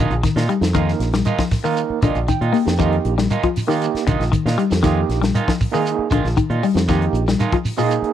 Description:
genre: afrobeat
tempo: 117 BPM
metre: 4/4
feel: straight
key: Bb mixolydian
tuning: A4 = 440 Hz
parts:
  - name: clean electric guitar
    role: arpeggios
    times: 0.0-8.0 s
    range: Bb2 to Bb3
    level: -21 LUFS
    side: left 7 dB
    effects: phaser
  - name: electric guitar at the edge of break-up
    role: stabs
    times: 0.0-7.9 s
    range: Eb3 to F4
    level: -26 LUFS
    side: right 7 dB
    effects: none
  - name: fingered electric bass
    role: bass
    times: 0.0-8.1 s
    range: Bb1 to Bb2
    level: -20 LUFS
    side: equal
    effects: none
  - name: tight funk drum kit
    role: drums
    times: 0.1-8.1 s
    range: hi-hat, kick drum, snare drum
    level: -24 LUFS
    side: equal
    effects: none
  - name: shekere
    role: percussion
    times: 0.1-8.0 s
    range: none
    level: -24 LUFS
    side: right 2 dB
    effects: none
  - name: overdriven tine electric piano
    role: accompaniment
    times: 0.5-8.1 s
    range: Bb3 to G5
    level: -23 LUFS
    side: right 9 dB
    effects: fast tremolo
room: small room ambience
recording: dry, close 1970s-style studio recording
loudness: -16 LUFS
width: side -10 dB against mid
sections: 0.0-8.1 A section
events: tine electric piano fill 1.8-2.8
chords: 0.0 Bb7sus4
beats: 0.24 | 0.75 1.26 1.77 2.29 | 2.80 3.31 3.82 4.33 | 4.84 5.35 5.87 6.38 | 6.89 7.40 7.91

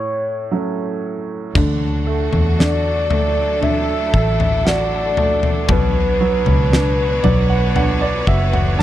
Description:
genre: pop ballad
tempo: 58 BPM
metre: 4/4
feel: straight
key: D major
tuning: A4 = 439 Hz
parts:
  - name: mellow horn-like synth lead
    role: melody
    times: 0.0-8.8 s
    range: B4 to E5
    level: -21 LUFS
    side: equal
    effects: chorus, slapback echo
  - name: clear upright piano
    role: accompaniment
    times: 0.0-8.8 s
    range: A2 to A5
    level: -22 LUFS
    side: right 4 dB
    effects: none
  - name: clear studio string section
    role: sustained chords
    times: 1.5-8.8 s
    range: F#3 to C#5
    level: -26 LUFS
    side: left 1 dB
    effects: none
  - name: vintage muted fingered electric bass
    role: bass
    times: 1.6-8.8 s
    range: F#1 to E2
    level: -19 LUFS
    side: left 1 dB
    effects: none
  - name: huge arena drum kit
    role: drums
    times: 1.6-8.8 s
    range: crash cymbal, kick drum, snare drum, toms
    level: -20 LUFS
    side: left 2 dB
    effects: none
room: studio reverb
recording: dry, close 1970s-style studio recording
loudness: -15 LUFS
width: side -13 dB against mid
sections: 0.0-1.6 A section; 1.6-8.8 B section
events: upright piano fill 6.7-8.8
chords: 0.0 A6; 1.6 D; 5.7 Bmadd9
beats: 0.52 | 1.56 2.59 3.63 4.66 | 5.70 6.73 7.76 8.80

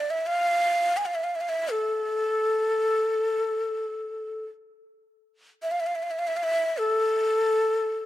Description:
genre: Arabic maqam ensemble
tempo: free time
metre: none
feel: none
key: unclear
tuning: A4 = 440 Hz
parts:
  - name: breathy ney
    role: solo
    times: 0.0-8.1 s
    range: A4 to G#5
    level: -24 LUFS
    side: equal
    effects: none
room: light reverb, small room ambience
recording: dry, close 1970s-style studio recording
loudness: -23 LUFS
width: side -14 dB against mid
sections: 0.0-8.1 A section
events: none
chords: none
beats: free time

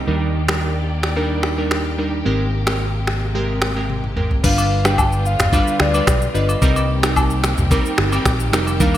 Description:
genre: afrobeats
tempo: 110 BPM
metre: 4/4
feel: straight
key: C minor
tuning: A4 = 440 Hz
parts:
  - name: clear studio string section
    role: sustained chords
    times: 0.0-9.0 s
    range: C3 to D5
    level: -28 LUFS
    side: left 1 dB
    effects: low-pass filter
  - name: fingered electric bass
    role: bass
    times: 0.0-9.0 s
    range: F1 to Eb2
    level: -21 LUFS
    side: equal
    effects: none
  - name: glassy digital keys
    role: accompaniment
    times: 0.1-9.0 s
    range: G3 to B4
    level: -22 LUFS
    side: right 2 dB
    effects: chorus, low-pass filter
  - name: afro-pop drum kit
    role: drums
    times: 0.5-9.0 s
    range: crash cymbal, finger snaps, kick drum, rim click, shaker, toms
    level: -20 LUFS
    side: equal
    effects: gated reverb
  - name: breathy flute-like synth lead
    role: melody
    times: 4.4-9.0 s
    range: D5 to G5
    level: -23 LUFS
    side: left 1 dB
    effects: chorus, digital delay
  - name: agogo bells and woodblock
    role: percussion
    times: 4.6-9.0 s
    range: none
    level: -26 LUFS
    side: left 2 dB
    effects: none
room: moderate lush hall reverb, RT60 1.7 s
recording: bright 1980s-style digital production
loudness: -16 LUFS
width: side -12 dB against mid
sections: 0.0-4.4 A section; 4.4-9.0 B section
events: drum fill 3.9-4.4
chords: 0.1 Ebmaj7; 2.3 Abmaj9; 4.4 G7; 6.6 Cm7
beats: | 0.07 0.62 1.17 1.71 | 2.26 2.80 3.35 3.89 | 4.44 4.98 5.53 6.07 | 6.62 7.17 7.71 8.26 | 8.80

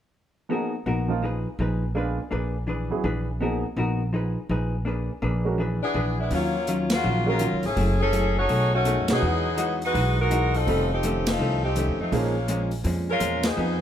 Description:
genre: jazz, big band swing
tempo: 165 BPM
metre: 4/4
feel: swing 64% on 8ths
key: Eb minor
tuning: A4 = 440 Hz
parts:
  - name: vintage hollow-body jazz guitar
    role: accompaniment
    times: 0.5-13.8 s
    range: F2 to Cb5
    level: -29 LUFS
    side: left 2 dB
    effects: none
  - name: warm upright piano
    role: accompaniment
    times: 0.5-12.3 s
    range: D#3 to Bb4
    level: -30 LUFS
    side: right 4 dB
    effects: none
  - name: upright bass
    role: bass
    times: 0.9-13.8 s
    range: F1 to B2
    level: -26 LUFS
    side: equal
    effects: none
  - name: clear saxophone section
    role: melody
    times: 5.8-13.8 s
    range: Db3 to Db5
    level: -25 LUFS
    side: left 1 dB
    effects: none
  - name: swinging big-band drum kit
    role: drums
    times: 6.3-13.5 s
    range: hi-hat, kick drum, ride cymbal, snare drum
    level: -31 LUFS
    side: equal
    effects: none
room: light reverb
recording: none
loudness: -22 LUFS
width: side -10 dB against mid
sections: 0.5-6.3 A section; 6.3-13.8 B section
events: band accent 6.9, 9.0, 11.2, 13.4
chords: 0.5 Bmaj7; 1.2 Fm7b5; 2.0 Bb7b9; 2.7 E7; 3.4 Bmaj7; 4.1 Fm7b5; 4.9 Bb7b9; 5.6 E7; 6.3 Ebm9; 7.8 Gbm9; 8.5 B13; 9.2 Emaj9; 10.7 F7b13; 12.1 Bbm7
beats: | 0.50 0.86 1.23 1.59 | 1.95 2.32 2.68 3.04 | 3.41 3.77 4.13 4.50 | 4.86 5.22 5.58 5.95 | 6.31 6.67 7.04 7.40 | 7.76 8.13 8.49 8.85 | 9.22 9.58 9.94 10.31 | 10.67 11.03 11.40 11.76 | 12.12 12.48 12.85 13.21 | 13.57

